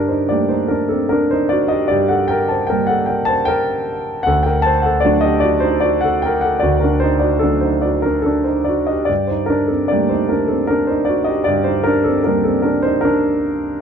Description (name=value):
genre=classical, lyrical solo piano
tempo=76 BPM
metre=3/4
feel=rubato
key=G harmonic minor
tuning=A4 = 440 Hz
part: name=warm concert grand piano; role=solo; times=0.0-13.8 s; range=D2 to A5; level=-14 LUFS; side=equal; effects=none
room=moderate studio reverb, RT60 0.6 s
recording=dark, warm production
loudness=-14 LUFS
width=side -7 dB against mid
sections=0.0-13.8 A section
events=none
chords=0.0 Gmadd9; 4.3 D; 9.1 Gmadd9